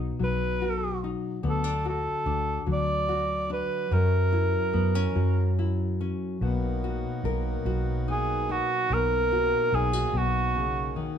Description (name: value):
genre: acoustic folk-pop ballad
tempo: 48 BPM (dotted quarters)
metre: 6/8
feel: straight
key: B major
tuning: A4 = 440 Hz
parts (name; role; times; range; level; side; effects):
- nylon-string guitar; accompaniment; 0.0-11.2 s; F#2 to A#4; -31 LUFS; left 4 dB; none
- vintage muted fingered electric bass; bass; 0.0-11.1 s; B1 to F#2; -28 LUFS; equal; none
- mellow cor anglais; melody; 0.2-11.0 s; F#4 to D5; -27 LUFS; right 2 dB; none
- pedal harmonium; sustained chords; 6.4-11.2 s; D#3 to F#4; -37 LUFS; right 1 dB; none
room: moderate large studio reverb, RT60 0.9 s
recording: band playing live in one room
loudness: -24 LUFS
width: side -8 dB against mid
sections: 0.0-6.4 A section; 6.4-11.2 B section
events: none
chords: 0.0 B; 1.4 D; 3.9 F#7; 6.4 Bmaj7